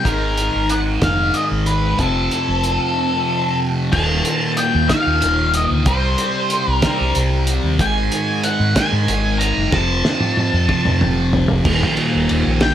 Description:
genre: psychedelic rock.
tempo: 62 BPM (dotted quarters).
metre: 6/8.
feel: straight.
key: unclear.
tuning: A4 = 440 Hz.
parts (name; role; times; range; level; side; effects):
octave-fuzz lead guitar; melody; 0.0-12.7 s; A4 to Bb5; -21 LUFS; left 2 dB; distortion, analog delay.
thick fuzz guitar; riff; 0.0-12.7 s; Eb2 to C4; -20 LUFS; equal; distortion, phaser.
fingered electric bass; bass; 0.1-12.7 s; Eb1 to Ab2; -20 LUFS; equal; none.
cloth-damped thuddy drum kit; drums; 0.1-12.7 s; crash cymbal, hi-hat, kick drum, ride cymbal, snare drum, toms; -21 LUFS; equal; none.
room: small room ambience.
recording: none.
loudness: -15 LUFS.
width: side -10 dB against mid.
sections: 0.0-3.9 A section; 3.9-11.7 B section; 11.7-12.7 C section.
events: drum fill 9.7-11.7.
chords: 0.1 Absus2; 2.0 F; 3.9 Eb5; 5.9 C5; 7.8 Ab5; 9.7 F; 11.7 Eb5.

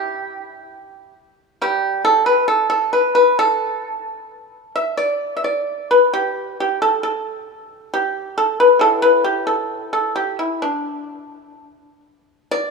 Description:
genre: chinese traditional, Chinese solo plucked strings.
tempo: 66 BPM.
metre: 2/4.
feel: rubato.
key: unclear.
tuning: A4 = 438 Hz.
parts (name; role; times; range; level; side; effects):
pipa; solo; 0.0-12.7 s; A2 to E5; -16 LUFS; left 1 dB; none.
room: moderate lush hall reverb, RT60 2.4 s.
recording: rough home demo mix, studio reverb.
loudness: -16 LUFS.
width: side -4 dB against mid.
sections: 0.0-12.5 A section.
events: none.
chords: none.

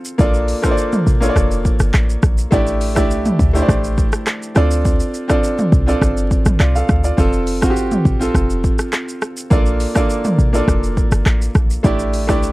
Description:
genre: afrobeats.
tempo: 103 BPM.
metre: 4/4.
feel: straight.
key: unclear.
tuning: A4 = 440 Hz.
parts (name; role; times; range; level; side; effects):
clear grand piano; accompaniment; 0.0-12.5 s; A3 to F5; -19 LUFS; right 1 dB; none.
deep house drum kit; drums; 0.1-12.5 s; handclaps, hi-hat, kick drum, rim click, shaker, toms; -18 LUFS; equal; none.
short 808-style bass; bass; 0.2-12.5 s; F1 to D2; -17 LUFS; equal; none.
room: little or no reverb.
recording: vinyl crackle.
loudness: -14 LUFS.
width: side -19 dB against mid.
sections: 0.0-12.5 A section.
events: none.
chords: 0.2 Bbmaj7; 2.5 A7sus4; 4.6 Dm7; 7.2 F; 9.5 Bbmaj7; 11.8 A7sus4.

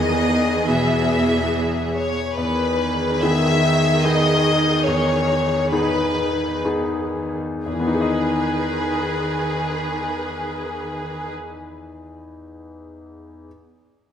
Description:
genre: cinematic, emotional film score for orchestra.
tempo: 57-74 BPM.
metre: 3/4.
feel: rubato.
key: E major.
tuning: A4 = 440 Hz.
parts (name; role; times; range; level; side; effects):
clear studio violin section; melody; 0.0-11.3 s; G#4 to E5; -24 LUFS; left 3 dB; none.
rich studio violin section; second line; 0.0-1.9 s; D#5 to E5; -24 LUFS; left 2 dB; none.
bright concert grand piano; accompaniment; 0.0-13.5 s; E2 to D#5; -24 LUFS; left 2 dB; none.
rich studio viola section; accompaniment; 0.0-11.3 s; D#3 to B4; -24 LUFS; right 2 dB; none.
clear studio double bass section; bass; 0.0-2.2 s; E2; -28 LUFS; right 3 dB; none.
rich studio cello section; bass; 0.0-1.9 s; D#3 to E3; -29 LUFS; right 3 dB; none.
room: wet scoring stage reverb, RT60 1.8 s.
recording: none.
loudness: -18 LUFS.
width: side -8 dB against mid.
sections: 0.0-2.4 A section; 2.4-7.7 B section; 7.7-10.6 C section.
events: slowing down 1.1-7.7.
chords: 0.0 Emaj7.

